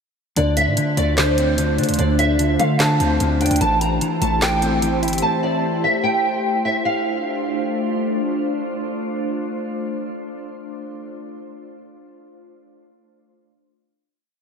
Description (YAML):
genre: hip hop, trap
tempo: 148 BPM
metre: 4/4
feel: half-time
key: D minor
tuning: A4 = 441 Hz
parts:
  - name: nylon-string guitar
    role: melody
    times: 0.4-8.0 s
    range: C5 to Bb5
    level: -21 LUFS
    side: right 1 dB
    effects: ensemble chorus, low-pass filter, diffuse ambient delay
  - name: mellow electric guitar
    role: accompaniment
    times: 0.4-6.0 s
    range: D3 to E4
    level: -22 LUFS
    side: equal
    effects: analog chorus, low-pass filter
  - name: glassy FM pad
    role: sustained chords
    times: 0.4-10.9 s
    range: A3 to C5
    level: -24 LUFS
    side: left 1 dB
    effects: ensemble chorus, built-in reverb
  - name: hard-hitting 808-style bass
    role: bass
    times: 0.4-5.2 s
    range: G1 to D3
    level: -22 LUFS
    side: equal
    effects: none
  - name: trap drum kit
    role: drums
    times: 0.4-5.2 s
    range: handclaps, hi-hat, snare drum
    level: -24 LUFS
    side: equal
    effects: none
room: wet huge ambient reverb, RT60 3.7 s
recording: dreamy mix soaked in reverb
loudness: -17 LUFS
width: side -6 dB against mid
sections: 0.4-6.9 hook; 6.9-10.1 final chord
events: none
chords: 0.4 Dm7; 3.6 Am7; 6.9 Dm7